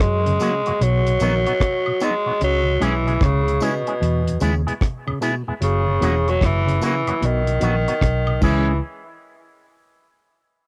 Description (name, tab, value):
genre	roots reggae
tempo	75 BPM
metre	4/4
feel	swing 64% on 16ths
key	C# dorian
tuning	A4 = 440 Hz
part	breathy tenor saxophone	melody	0.0-8.8 s	B2 to G#3	-24 LUFS	equal	cassette tape, dub echo
part	overdriven clav	arpeggios	0.0-8.7 s	B2 to F#3	-30 LUFS	equal	cassette tape
part	vintage muted fingered electric bass	bass	0.0-8.8 s	E1 to F#2	-23 LUFS	equal	tube saturation
part	deep reggae drum kit	drums	0.0-8.7 s	crash cymbal, hi-hat, kick drum, rim click	-25 LUFS	equal	cassette tape
part	mellow tonewheel organ	accompaniment	0.3-8.7 s	E2 to F#4	-29 LUFS	equal	slow rotary speaker, cassette tape
part	electric guitar with an envelope filter	accompaniment	0.4-8.7 s	F#3 to G#4	-30 LUFS	equal	vibrato effect, cassette tape, dub echo
part	tambourine and woodblock	percussion	0.4-8.8 s	none	-36 LUFS	equal	none
room	light reverb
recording	home recording on cassette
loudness	-20 LUFS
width	mono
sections	0.0-8.8 A section; 8.8-10.7 B section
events	none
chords	0.0 F#; 0.8 B; 2.4 C#m; 4.0 E; 5.6 F#; 7.2 B; 8.4 C#m; 8.8 N.C.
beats	0.01 0.81 1.61 | 2.41 3.21 4.01 4.81 | 5.61 6.42 7.22 8.02